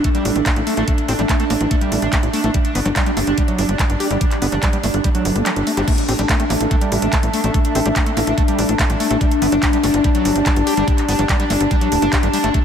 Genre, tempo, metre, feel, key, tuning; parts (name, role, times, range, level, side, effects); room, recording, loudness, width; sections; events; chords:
psychedelic trance; 144 BPM; 4/4; straight; A4 = 440 Hz
pulsing gated texture; sustained chords; 0.0-12.6 s; D4; -20 LUFS; left 2 dB; chorus, built-in reverb, sidechain pumping
overdriven acid bass; riff; 0.0-12.6 s; F#3 to G4; -24 LUFS; moving between left 4 dB and right 3 dB; auto-pan, sidechain pumping, ping-pong delay
drum and bass drum kit; drums; 0.0-12.6 s; crash cymbal, handclaps, hi-hat; -24 LUFS; right 1 dB
electronic kick drum; drums; 0.0-12.6 s; -18 LUFS; equal
warbly tape-like pad; texture; 0.0-12.6 s; G4 to A5; -26 LUFS; right 2 dB; chorus, built-in reverb, sidechain pumping
tight sequencer bass; bass; 0.3-12.5 s; D1 to A1; -21 LUFS; equal
swell and zap; sound effects; 5.2-5.9 s; -32 LUFS; right 1 dB
moderate cathedral reverb, RT60 6.0 s; dreamy mix soaked in reverb; -15 LUFS; side -8 dB against mid
0.0-5.9 A section; 5.9-12.6 B section
swell 5.2-5.9; kick drops out 5.5-5.9; drop 5.9-12.6
0.0 A5; 2.5 G5; 5.9 A5; 9.2 G5